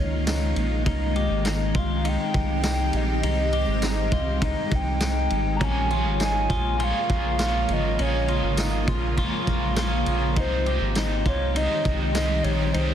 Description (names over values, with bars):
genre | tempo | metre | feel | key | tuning
dream pop | 101 BPM | 4/4 | straight | unclear | A4 = 440 Hz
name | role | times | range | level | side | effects
warbly nostalgic lead | melody | 0.0-12.9 s | C5 to Bb5 | -29 LUFS | equal | chorus, tape echo
granular cloud pad | sustained chords | 0.0-12.9 s | Db3 to G4 | -28 LUFS | equal | built-in reverb
clean electric guitar | arpeggios | 0.0-12.9 s | Db4 to G4 | -32 LUFS | left 4 dB | wide subtle chorus, tape echo
round analog bass | bass | 0.0-12.9 s | Ab1 to Db2 | -26 LUFS | equal | none
vintage drum kit | drums | 0.3-12.9 s | kick drum, ride cymbal, snare drum, tambourine | -29 LUFS | equal | soft clipping on kick
crunchy overdriven guitar | accompaniment | 5.6-12.9 s | C3 to Db5 | -30 LUFS | right 3 dB | harmonic tremolo, wide subtle chorus
room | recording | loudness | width
moderate concert hall reverb, RT60 1.9 s, small room reverb | dense, heavily limited modern master | -21 LUFS | side -9 dB against mid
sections
0.0-12.9 A section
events
none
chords
0.0 Db69; 0.9 Abmaj7; 5.6 Bbm7; 10.4 Abmaj7